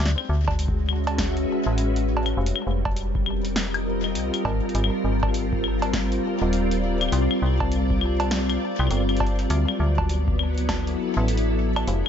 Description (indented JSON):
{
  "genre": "IDM",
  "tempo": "101 BPM",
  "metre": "4/4",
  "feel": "swing 62% on 16ths",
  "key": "unclear",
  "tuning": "A4 = 439 Hz",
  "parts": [
    { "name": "soft string machine", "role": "sustained chords", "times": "0.3-12.1 s", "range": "F#3 to E5", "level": "-25 LUFS", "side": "left 1 dB", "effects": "ensemble chorus" },
    { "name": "metallic FM bass", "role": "bass", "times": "0.0-12.0 s", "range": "Eb1 to D2", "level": "-24 LUFS", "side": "equal", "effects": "tube saturation" },
    { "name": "electro analog drum machine", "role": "drums", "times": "0.1-12.1 s", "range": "claves, cowbell, hi-hat, snare drum", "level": "-28 LUFS", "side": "left 1 dB", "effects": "ping-pong delay" },
    { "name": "electronic kick drum", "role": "drums", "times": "0.5-10.8 s", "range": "none", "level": "-28 LUFS", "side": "equal", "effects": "none" }
  ],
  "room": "light reverb",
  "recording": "nothing above 7.7 kHz",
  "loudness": "-21 LUFS",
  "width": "side -8 dB against mid",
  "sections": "0.0-12.1 A section",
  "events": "none",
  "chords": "0.0 Dsus2; 2.4 F7(no3); 4.7 Abmaj7; 7.1 C5; 9.5 Dsus2"
}